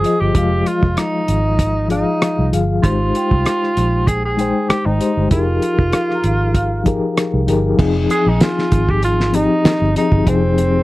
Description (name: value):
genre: lush 1970s-style soul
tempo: 97 BPM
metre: 4/4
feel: swing 54% on 16ths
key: F minor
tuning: A4 = 440 Hz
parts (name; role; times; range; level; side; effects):
- breathy tenor saxophone; melody; 0.0-10.8 s; C4 to Ab4; -19 LUFS; right 1 dB; none
- mellow reed electric piano; accompaniment; 0.0-10.8 s; F3 to G5; -19 LUFS; left 3 dB; fast tremolo
- vintage muted fingered electric bass; bass; 0.0-10.8 s; F1 to C2; -18 LUFS; right 1 dB; none
- cloth-damped thuddy drum kit; drums; 0.0-10.7 s; crash cymbal, hi-hat, kick drum, rim click, snare drum; -17 LUFS; right 1 dB; none
- large celesta; texture; 3.2-9.5 s; F5 to Bb5; -30 LUFS; right 2 dB; none
room: little or no reverb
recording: dry, close 1970s-style studio recording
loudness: -14 LUFS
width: side -18 dB against mid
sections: 0.0-7.8 A section; 7.8-10.8 B section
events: none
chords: 0.0 Fm7; 2.8 Abmaj7; 5.3 Fm11